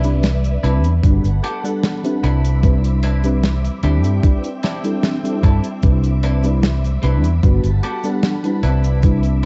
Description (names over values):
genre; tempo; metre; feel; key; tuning
vaporwave; 75 BPM; 4/4; straight; C lydian; A4 = 440 Hz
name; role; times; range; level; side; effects
mellow FM electric piano; accompaniment; 0.0-9.5 s; G3 to F#5; -25 LUFS; equal; ensemble chorus, vintage 12-bit sampler grit, analog delay
soft string machine; sustained chords; 0.0-9.5 s; G3 to D6; -33 LUFS; equal; ensemble chorus
clean electric guitar; riff; 0.0-9.5 s; B3 to B4; -30 LUFS; equal; lush chorus, analog delay
fretless electric bass; bass; 0.0-9.5 s; G1 to G2; -18 LUFS; equal; tube saturation
tight metal drum kit; drums; 0.0-9.5 s; cabasa, hi-hat, snare drum; -26 LUFS; equal; none
electronic kick drum; drums; 1.0-9.2 s; none; -16 LUFS; equal; overdrive
room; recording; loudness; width
studio reverb; dark, warm production, nothing above 8.0 kHz; -17 LUFS; mono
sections
0.0-9.5 A section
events
none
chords
0.0 Cmaj9; 1.0 Gmaj9; 2.2 Cmaj9; 3.8 D9sus4; 5.8 Cmaj9; 7.4 Gmaj9; 8.6 Cmaj9